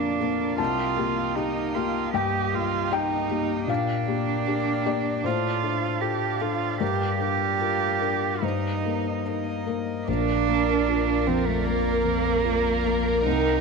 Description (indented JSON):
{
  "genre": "neoclassical piano and strings",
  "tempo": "77 BPM",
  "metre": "4/4",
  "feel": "rubato",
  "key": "unclear",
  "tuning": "A4 = 439 Hz",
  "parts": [
    { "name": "dark cello", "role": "second line", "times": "0.0-13.6 s", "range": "A3 to G4", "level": "-26 LUFS", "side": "right 13 dB", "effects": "none" },
    { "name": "felt-muted upright piano", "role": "accompaniment", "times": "0.0-13.6 s", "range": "Bb1 to Bb5", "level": "-27 LUFS", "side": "left 9 dB", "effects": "none" },
    { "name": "hand-pumped harmonium", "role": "sustained chords", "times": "0.0-13.6 s", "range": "A3 to Eb5", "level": "-34 LUFS", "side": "right 1 dB", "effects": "none" },
    { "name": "warm chamber violin section", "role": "melody", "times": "10.1-13.6 s", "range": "Bb4", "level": "-28 LUFS", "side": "left 3 dB", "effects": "none" },
    { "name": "vibraphone with soft mallets", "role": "arpeggios", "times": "10.1-13.6 s", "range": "C4 to Bb5", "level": "-34 LUFS", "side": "right 15 dB", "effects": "none" },
    { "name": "pure sine sub bass", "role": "bass", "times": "10.1-13.6 s", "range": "Bb1 to C2", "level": "-30 LUFS", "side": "equal", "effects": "none" }
  ],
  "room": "light reverb, studio ambience",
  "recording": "1960s-style stereo with parts hard left and right",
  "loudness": "-22 LUFS",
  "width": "side -4 dB against mid",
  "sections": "0.0-10.1 A section; 10.1-13.6 A section",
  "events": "none",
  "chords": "0.0 Bb; 0.6 Cm7; 3.7 Gm7/Bb; 5.2 Dm7/A; 6.8 Gm7; 8.4 Eb6/G; 10.1 Bb"
}